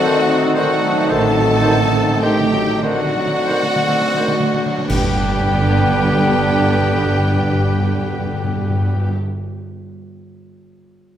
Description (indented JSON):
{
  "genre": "classical, slow romantic movement for symphony orchestra",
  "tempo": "27-39 BPM (dotted quarters)",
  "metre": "12/8",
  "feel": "rubato",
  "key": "G major",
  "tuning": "A4 = 439 Hz",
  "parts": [
    { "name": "rich studio violin section", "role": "melody", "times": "0.0-9.1 s", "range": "F#5 to A5", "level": "-26 LUFS", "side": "left 4 dB", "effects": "none" },
    { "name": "mellow hollow silver concert flute", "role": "second line", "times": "0.0-9.1 s", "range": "D5 to G5", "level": "-25 LUFS", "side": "left 1 dB", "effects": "none" },
    { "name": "rich studio violin section", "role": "second line", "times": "0.0-9.2 s", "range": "F#4 to A4", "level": "-27 LUFS", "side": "left 2 dB", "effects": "none" },
    { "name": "warm oboe", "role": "second line", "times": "0.0-9.1 s", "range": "B4 to C5", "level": "-29 LUFS", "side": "equal", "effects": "none" },
    { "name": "mellow bassoon", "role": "accompaniment", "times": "0.0-9.1 s", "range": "D3 to Eb3", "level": "-26 LUFS", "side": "right 2 dB", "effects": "none" },
    { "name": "rich studio viola section", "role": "accompaniment", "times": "0.0-9.1 s", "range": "D3 to Eb4", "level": "-23 LUFS", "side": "right 2 dB", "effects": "none" },
    { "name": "warm French horn section", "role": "sustained chords", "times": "0.0-9.1 s", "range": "C4 to A4", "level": "-25 LUFS", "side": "left 4 dB", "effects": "none" },
    { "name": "warm trombone section", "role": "sustained chords", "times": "0.0-9.1 s", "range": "D3 to B3", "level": "-25 LUFS", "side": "right 1 dB", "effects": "none" },
    { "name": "clear trumpet", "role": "stabs", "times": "0.0-9.1 s", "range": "F#4 to A4", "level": "-24 LUFS", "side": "right 1 dB", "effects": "none" },
    { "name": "timpani", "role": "percussion", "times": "0.0-9.1 s", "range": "G2 to D3", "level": "-23 LUFS", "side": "left 1 dB", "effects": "none" },
    { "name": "rich studio cello section", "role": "bass", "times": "1.1-9.1 s", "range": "G2 to A2", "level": "-24 LUFS", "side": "right 2 dB", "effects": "none" },
    { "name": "rich studio double bass section", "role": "bass", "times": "1.1-9.1 s", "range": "G1 to A1", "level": "-24 LUFS", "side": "right 4 dB", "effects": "none" },
    { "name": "clash cymbals and concert bass drum", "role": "percussion", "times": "4.9-7.4 s", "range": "none", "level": "-28 LUFS", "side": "equal", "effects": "none" }
  ],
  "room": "wet scoring stage reverb, RT60 1.8 s",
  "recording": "none",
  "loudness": "-14 LUFS",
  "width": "side -10 dB against mid",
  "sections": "0.0-4.9 A section; 4.9-11.2 B section",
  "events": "timpani fill 0.0-4.9; slowing down 0.0-4.9; band accent 4.9-6.2",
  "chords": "0.0 D7b9; 4.9 G"
}